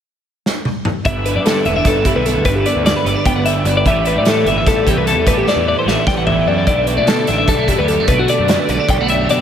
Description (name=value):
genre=math rock and midwest emo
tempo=299 BPM (eighths)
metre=7/8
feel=straight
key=G major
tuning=A4 = 440 Hz
part: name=loose indie drum kit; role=drums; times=0.5-9.4 s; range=hi-hat, kick drum, snare drum, toms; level=-19 LUFS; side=right 1 dB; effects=none
part: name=twelve-string electric guitar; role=accompaniment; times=1.1-9.4 s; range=E2 to G4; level=-20 LUFS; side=right 6 dB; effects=ensemble chorus
part: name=twelve-string electric guitar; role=arpeggios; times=1.1-9.4 s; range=F#4 to G5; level=-16 LUFS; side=left 3 dB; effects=diffuse ambient delay
part: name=fuzz picked electric bass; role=bass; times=1.1-9.4 s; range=E1 to B2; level=-20 LUFS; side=equal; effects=overdrive
room=wet huge ambient reverb, RT60 7.0 s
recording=dreamy mix soaked in reverb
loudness=-13 LUFS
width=side -9 dB against mid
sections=0.0-1.1 A section; 1.1-9.4 B section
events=drum fill 0.5-1.1, 5.5-6.7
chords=0.0 N.C.; 1.1 G69; 3.9 A7sus2; 6.7 Bm7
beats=0.06 0.26 0.46 0.66 0.86 | 1.06 1.26 1.46 1.66 1.86 2.06 2.26 | 2.46 2.66 2.86 3.06 3.26 3.46 3.67 | 3.87 4.07 4.27 4.47 4.67 4.87 5.07 | 5.27 5.47 5.67 5.87 6.07 6.27 6.47 | 6.67 6.88 7.08 7.28 7.48 7.68 7.88 | 8.08 8.28 8.48 8.68 8.88 9.09 9.29